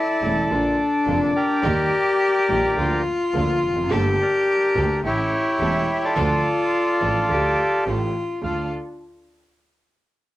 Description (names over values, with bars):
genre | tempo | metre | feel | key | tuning
tango | 106 BPM | 4/4 | rubato | D harmonic minor | A4 = 437 Hz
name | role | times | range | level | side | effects
bandoneon | melody | 0.0-8.7 s | D4 to F5 | -22 LUFS | equal | cassette tape
rich cello | second line | 0.0-8.7 s | D4 to G4 | -22 LUFS | left 2 dB | cassette tape
warm concert grand piano | accompaniment | 0.2-8.7 s | E1 to A4 | -27 LUFS | right 2 dB | cassette tape
rich studio string section | stabs | 0.2-8.7 s | A3 to A4 | -32 LUFS | right 2 dB | cassette tape
clear double bass | bass | 0.2-8.7 s | E1 to Eb2 | -27 LUFS | right 2 dB | none
room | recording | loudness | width
light reverb | home recording on cassette | -18 LUFS | side -16 dB against mid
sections
0.0-8.4 A section; 8.4-10.4 B section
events
none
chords
0.5 Bb; 1.6 Eb; 2.8 Bb/D; 3.9 Gmadd9; 5.0 A7; 6.2 Dm; 7.9 A7; 8.4 Dm